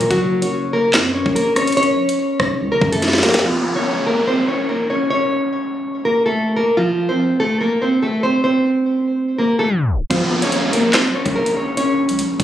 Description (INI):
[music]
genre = hip hop, drill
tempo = 144 BPM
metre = 4/4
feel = half-time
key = Bb harmonic minor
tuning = A4 = 439 Hz
[part]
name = nylon-string guitar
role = melody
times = 0.0-12.4 s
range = F3 to Db5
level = -16 LUFS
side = equal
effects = low-pass filter, ping-pong delay
[part]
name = long sustained 808-style bass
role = bass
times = 0.0-3.4, 10.1-12.4 s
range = F1 to Gb2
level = -24 LUFS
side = equal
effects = none
[part]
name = drill drum kit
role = drums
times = 0.0-3.5, 10.1-12.4 s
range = handclaps, hi-hat, kick drum, rim click, snare drum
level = -18 LUFS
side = equal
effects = none
[part]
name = downlifter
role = sound effects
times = 3.4-6.8, 10.1-12.4 s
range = none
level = -23 LUFS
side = equal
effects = none
[sound]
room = light reverb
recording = recorded on a phone in the room, studio reverb, compression, tape stop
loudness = -15 LUFS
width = side -11 dB against mid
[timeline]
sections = 0.0-3.4 A section; 3.4-10.1 B section; 10.1-12.4 C section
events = drum fill 3.0-3.4; tape stop 9.7-10.1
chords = 0.1 Gb; 3.4 Bbm; 6.8 F (rootless); 10.1 Bbm